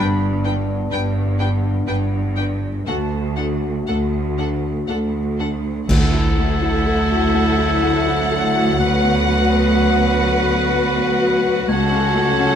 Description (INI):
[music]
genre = cinematic, emotional film score for orchestra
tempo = 62 BPM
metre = 3/4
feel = rubato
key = D major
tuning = A4 = 439 Hz
[part]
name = rich symphonic violin section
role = melody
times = 0.0-12.6 s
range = F#5 to G5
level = -26 LUFS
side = left 3 dB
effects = none
[part]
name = bright large flute ensemble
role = second line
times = 0.0-12.6 s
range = F#5 to B5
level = -28 LUFS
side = left 3 dB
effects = none
[part]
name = clear symphonic violin section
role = second line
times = 0.0-12.6 s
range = A4 to B4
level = -26 LUFS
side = left 2 dB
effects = none
[part]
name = warm clarinet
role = second line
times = 0.0-12.6 s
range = D4 to F#4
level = -28 LUFS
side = left 5 dB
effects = none
[part]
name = felt-muted upright piano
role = accompaniment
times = 0.0-12.6 s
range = C#2 to A4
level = -24 LUFS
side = left 2 dB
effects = none
[part]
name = rich symphonic viola section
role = accompaniment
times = 0.0-12.6 s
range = D4 to F#4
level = -27 LUFS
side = left 1 dB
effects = none
[part]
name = dark French horn section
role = sustained chords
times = 0.0-12.6 s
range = F#3 to F#4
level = -27 LUFS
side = left 4 dB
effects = none
[part]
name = clear symphonic cello section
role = bass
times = 0.0-12.6 s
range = C#2 to G2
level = -24 LUFS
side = right 2 dB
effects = none
[part]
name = rich symphonic double bass section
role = bass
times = 0.0-12.6 s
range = G1 to D2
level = -23 LUFS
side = right 4 dB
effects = none
[part]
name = warm oboe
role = second line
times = 5.9-12.6 s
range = A4 to C#5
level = -25 LUFS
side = right 1 dB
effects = none
[part]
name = clash cymbals and concert bass drum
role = percussion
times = 5.9-7.8 s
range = none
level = -22 LUFS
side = equal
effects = none
[part]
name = timpani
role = percussion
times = 5.9-7.3 s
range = D3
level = -24 LUFS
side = right 1 dB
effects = none
[sound]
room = light reverb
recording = none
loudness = -16 LUFS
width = side -8 dB against mid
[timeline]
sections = 0.0-5.9 A section; 5.9-12.6 B section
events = band accent 5.9-6.9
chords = 0.0 G; 2.9 D; 5.9 Dadd9; 8.8 Bm/D; 11.7 F#m/C#